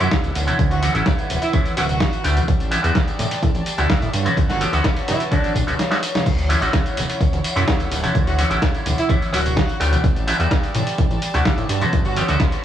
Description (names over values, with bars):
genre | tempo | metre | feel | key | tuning
filtered disco house | 127 BPM | 4/4 | straight | D major | A4 = 442 Hz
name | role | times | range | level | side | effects
warm horn section | melody | 0.0-12.2 s | D4 to F#4 | -27 LUFS | right 1 dB | sidechain pumping, cassette tape, analog delay
bright clav | accompaniment | 0.0-12.6 s | D3 to G4 | -24 LUFS | equal | phaser, sidechain pumping, cassette tape
clear studio violin section | sustained chords | 0.0-12.6 s | G3 to A5 | -29 LUFS | left 1 dB | vintage 12-bit sampler grit, sidechain pumping, cassette tape
fat analog bass | bass | 0.0-12.4 s | D1 to A2 | -22 LUFS | equal | transformer saturation, sidechain pumping
dusty soul sampler-style drum kit | drums | 0.0-12.6 s | crash cymbal, hi-hat, snare drum, tambourine | -25 LUFS | equal | overdrive, sidechain pumping on hats, cassette tape, sidechain pumping on perc, sidechain pumping on cymbals
tambourine and congas | percussion | 0.0-12.6 s | none | -29 LUFS | right 7 dB | sidechain pumping on perc
electronic kick drum | drums | 0.1-12.5 s | none | -20 LUFS | equal | cassette tape
room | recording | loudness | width
digital ambience | home recording on cassette | -17 LUFS | side -10 dB against mid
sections
0.0-12.6 A section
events
kick drops out 5.8-6.3; drum fill 5.8-6.3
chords
0.0 Dmaj9; 2.5 A7sus4; 4.1 Gmaj9#11; 6.3 Dmaj9; 10.0 A7sus4; 11.7 Gmaj9#11